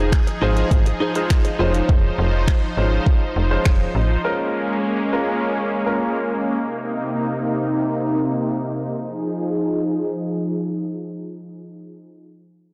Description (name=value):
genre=dance-pop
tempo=102 BPM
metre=4/4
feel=straight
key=F minor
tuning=A4 = 440 Hz
part: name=clear grand piano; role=accompaniment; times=0.0-6.3 s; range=Ab3 to C5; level=-28 LUFS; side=equal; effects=sidechain pumping, low-pass filter
part: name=supersaw pad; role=sustained chords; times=0.0-12.1 s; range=C3 to C5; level=-25 LUFS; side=equal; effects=sidechain pumping, low-pass filter
part: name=direct-recorded clean electric guitar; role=riff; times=0.0-1.9 s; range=Eb4 to C5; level=-28 LUFS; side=equal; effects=subtle chorus, low-pass filter
part: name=slap-like FM bass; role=bass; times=0.0-4.2 s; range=F1 to A1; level=-22 LUFS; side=equal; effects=sidechain pumping
part: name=deep house drum kit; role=drums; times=0.1-3.8 s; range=finger snaps, hi-hat, kick drum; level=-20 LUFS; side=equal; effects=none
room=moderate lush hall reverb, RT60 2.2 s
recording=blown-out, overdriven recording, overdrive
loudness=-21 LUFS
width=mono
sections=0.0-8.9 A section; 8.9-11.3 B section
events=filter sweep 0.0-8.9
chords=0.0 Fm7; 1.6 Dbmaj7/F; 4.2 Bbm7; 6.6 Cm7; 8.9 Fm7